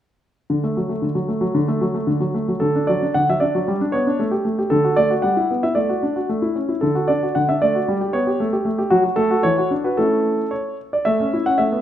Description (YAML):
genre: classical-period piano sonatina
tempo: 114 BPM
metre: 2/4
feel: straight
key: D major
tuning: A4 = 439 Hz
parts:
  - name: warm concert grand piano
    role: solo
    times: 0.5-11.8 s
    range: D3 to F#5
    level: -17 LUFS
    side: equal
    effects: none
room: moderate recital hall reverb, RT60 1.7 s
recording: none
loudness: -17 LUFS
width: side -11 dB against mid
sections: 0.5-2.6 A section; 2.6-11.1 B section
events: none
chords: 0.5 D; 3.7 G; 4.2 A7(no3); 4.7 D; 5.2 Em/G; 5.8 D/A; 6.3 A; 6.8 D; 7.9 G; 8.4 A7(no3); 8.9 F#m; 9.4 Esus2; 10.0 A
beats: | 0.50 1.03 | 1.55 2.08 | 2.62 3.15 | 3.67 4.19 | 4.71 5.23 | 5.75 6.29 | 6.82 7.35 | 7.87 8.39 | 8.92 9.45 | 9.99 10.53 | 11.07 11.60